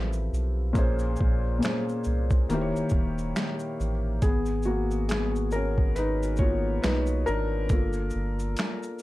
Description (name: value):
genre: lo-fi hip hop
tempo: 69 BPM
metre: 4/4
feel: swing 59% on 16ths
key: G# dorian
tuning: A4 = 440 Hz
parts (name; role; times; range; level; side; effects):
- felt-muted upright piano; accompaniment; 0.0-9.0 s; A#2 to C#5; -28 LUFS; left 2 dB; cassette tape
- soft dub sub bass; bass; 0.0-8.6 s; D#1 to B#1; -28 LUFS; equal; none
- boom bap sampler-style drum kit; drums; 0.1-9.0 s; finger snaps, hi-hat, kick drum, shaker, snare drum; -26 LUFS; equal; none
room: little or no reverb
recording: dark, warm production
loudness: -24 LUFS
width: side -17 dB against mid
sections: 0.0-4.2 A section; 4.2-9.0 A section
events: felt piano solo 4.2-9.0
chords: 0.0 Fmaj7; 0.7 A#m9; 2.5 D#7b9; 4.2 G#m9; 7.7 Gm9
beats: | 0.75 1.62 2.49 3.36 | 4.23 5.10 5.97 6.84 | 7.71 8.57